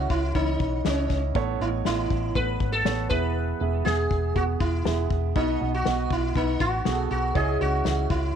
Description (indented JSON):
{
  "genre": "piano-driven pop",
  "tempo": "120 BPM",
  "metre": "4/4",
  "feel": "straight",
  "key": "C# minor",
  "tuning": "A4 = 440 Hz",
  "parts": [
    { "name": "sitar", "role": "melody", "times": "0.0-8.4 s", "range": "C#4 to B4", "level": "-28 LUFS", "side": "equal", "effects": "none" },
    { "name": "warm grand piano", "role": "accompaniment", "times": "0.0-8.4 s", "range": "A2 to F#5", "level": "-29 LUFS", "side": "right 11 dB", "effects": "none" },
    { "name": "vintage muted fingered electric bass", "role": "bass", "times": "0.0-8.3 s", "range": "E1 to C#2", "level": "-27 LUFS", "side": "left 1 dB", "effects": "none" },
    { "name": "downlifter", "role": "sound effects", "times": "0.0-1.4 s", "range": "none", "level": "-51 LUFS", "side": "left 1 dB", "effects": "none" },
    { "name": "unplugged drum kit", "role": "drums", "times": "0.1-8.2 s", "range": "kick drum, snare drum", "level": "-29 LUFS", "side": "left 4 dB", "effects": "none" }
  ],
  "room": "light reverb, small room reverb",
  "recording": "1960s-style stereo",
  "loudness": "-22 LUFS",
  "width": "side -8 dB against mid",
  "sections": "0.0-8.4 A section",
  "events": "none",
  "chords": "0.0 C#madd9; 1.4 Aadd9; 3.1 E; 5.4 B; 7.4 C#madd9"
}